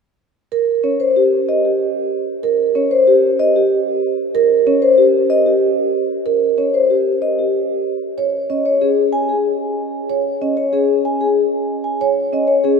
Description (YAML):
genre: classical, minimalist pattern music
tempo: 188 BPM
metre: 6/4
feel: straight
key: Eb mixolydian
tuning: A4 = 440 Hz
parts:
  - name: marimba with soft mallets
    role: arpeggios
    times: 0.5-12.8 s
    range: Db4 to Db5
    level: -19 LUFS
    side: right 5 dB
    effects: none
  - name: vibraphone with soft mallets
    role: melody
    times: 0.8-12.8 s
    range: G4 to Ab5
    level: -15 LUFS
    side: left 2 dB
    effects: none
room: wet cathedral reverb, RT60 5.7 s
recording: in a vast, echoing space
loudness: -14 LUFS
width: side -5 dB against mid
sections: 0.0-12.8 A section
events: none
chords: 0.0 Eb7 (rootless); 7.7 Db5